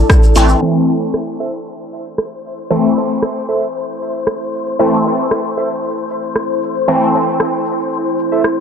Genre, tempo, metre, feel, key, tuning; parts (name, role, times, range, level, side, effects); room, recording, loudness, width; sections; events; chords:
dub techno; 115 BPM; 4/4; straight; A minor; A4 = 440 Hz
deep dark ambient pad; sustained chords; 0.0-8.6 s; E4 to D5; -23 LUFS; right 2 dB; chorus, built-in reverb, sidechain pumping
warm sub bass; bass; 0.0-0.5 s; A1; -12 LUFS; equal; transformer saturation, sidechain pumping
wind-like tuned noise texture; texture; 0.0-8.6 s; A4 to C5; -23 LUFS; left 5 dB; built-in reverb, sidechain pumping
punchy analog drum machine; drums; 0.1-8.6 s; hi-hat, rim click; -18 LUFS; equal
tube shaker; percussion; 0.1-8.6 s; -28 LUFS; left 2 dB
resonant sweep polysynth; stabs; 0.4-7.0 s; E3 to C4; -16 LUFS; equal; chorus, phaser, cassette tape, sidechain pumping, dub echo
warbly lo-fi synth keys; riff; 0.6-8.4 s; A4 to E5; -24 LUFS; right 4 dB; chorus, sidechain pumping, dub echo
light reverb; dry, gritty hardware recording, cassette tape, low-pass filter; -13 LUFS; side -7 dB against mid
0.6-8.6 A section
filter sweep on ambient pad 0.6-8.6; filter sweep 0.6-8.6
0.0 Am